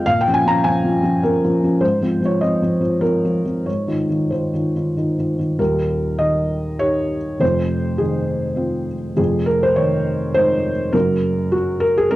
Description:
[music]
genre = neoclassical minimalist piano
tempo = 93-105 BPM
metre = 3/4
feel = rubato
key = F minor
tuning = A4 = 438 Hz
[part]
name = felt-muted upright piano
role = solo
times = 0.0-12.2 s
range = Eb1 to Bb5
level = -16 LUFS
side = equal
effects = none
[sound]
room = moderate studio reverb, RT60 0.5 s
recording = home recording on cassette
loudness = -16 LUFS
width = side -16 dB against mid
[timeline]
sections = 0.0-5.6 A section; 5.6-12.2 B section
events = none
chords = 0.1 Bbm7; 1.8 F7(no3); 3.7 Ab6; 5.6 Eb; 7.4 Fm7; 9.2 Dbadd9/F; 10.9 Gbadd9

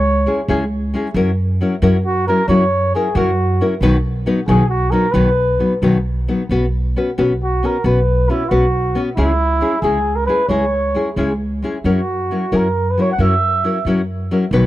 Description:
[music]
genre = mexican folk, mariachi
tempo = 90 BPM (dotted quarters)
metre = 6/8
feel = rubato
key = B major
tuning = A4 = 442 Hz
[part]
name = warm flugelhorn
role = melody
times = 0.0-13.9 s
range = E4 to F#5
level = -19 LUFS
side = right 1 dB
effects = none
[part]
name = upright bass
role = bass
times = 0.0-14.7 s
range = B1 to F#2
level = -19 LUFS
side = right 1 dB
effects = none
[part]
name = nylon-string guitar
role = accompaniment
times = 0.3-14.7 s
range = B2 to B4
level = -18 LUFS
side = left 2 dB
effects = none
[sound]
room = small room ambience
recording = dry, close 1970s-style studio recording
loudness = -14 LUFS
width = side -15 dB against mid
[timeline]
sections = 0.0-6.5 A section; 6.5-14.7 A section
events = none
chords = 0.0 C#m; 1.2 F#7; 3.8 B; 6.5 Bsus2; 9.2 C#m; 11.9 F#7

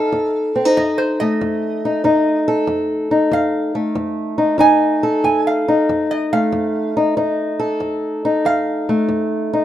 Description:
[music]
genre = acoustic country blues, solo or duo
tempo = 94 BPM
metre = 4/4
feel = swing 67% on 8ths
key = F mixolydian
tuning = A4 = 437 Hz
[part]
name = metal-body resonator slide guitar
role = melody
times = 0.0-9.1 s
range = C5 to Ab5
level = -19 LUFS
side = right 5 dB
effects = none
[part]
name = fingerpicked old ladder-braced acoustic guitar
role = accompaniment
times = 0.0-9.6 s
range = F2 to A4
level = -16 LUFS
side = left 1 dB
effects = none
[sound]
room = light reverb, small room ambience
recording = rough home demo mix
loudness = -15 LUFS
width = side -12 dB against mid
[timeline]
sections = 0.0-9.6 A section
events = none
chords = 0.0 F7

